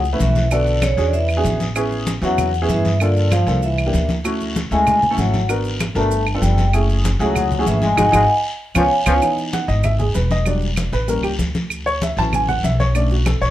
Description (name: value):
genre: Afro-Cuban jazz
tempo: 193 BPM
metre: 4/4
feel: straight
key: F# minor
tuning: A4 = 440 Hz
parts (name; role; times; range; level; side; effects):
- vibraphone with medium hard mallets; melody; 0.0-9.2 s; C#5 to A5; -20 LUFS; equal; none
- breathy trombone; second line; 0.0-9.1 s; C#3 to A3; -25 LUFS; left 3 dB; none
- upright bass; bass; 0.0-13.5 s; E1 to G2; -19 LUFS; equal; none
- congas; percussion; 0.0-13.5 s; none; -25 LUFS; left 1 dB; none
- maracas; percussion; 0.0-13.5 s; none; -38 LUFS; right 6 dB; none
- warm upright piano; accompaniment; 0.1-13.5 s; D3 to A5; -22 LUFS; right 1 dB; none
- guiro; percussion; 0.2-13.5 s; none; -32 LUFS; left 3 dB; none
- claves; percussion; 0.5-13.4 s; none; -26 LUFS; right 5 dB; none
room: moderate studio reverb, RT60 0.5 s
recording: dark, warm production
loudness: -16 LUFS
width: side -13 dB against mid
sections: 0.0-9.2 A section; 9.2-13.5 B section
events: band accent 8.0-9.2; upright piano solo 9.2-13.5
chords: 0.0 F#m7 (rootless); 0.5 Bm9; 1.1 E9; 1.8 Amaj9; 3.0 Gm7; 3.6 C9; 4.2 Dmaj7; 5.5 G#m7b5; 6.1 G9; 6.7 F#m7; 8.0 G#5; 8.6 C#7; 9.2 Emaj7; 10.5 Em9; 11.1 A7b9; 11.7 Dmaj9; 12.9 Bm7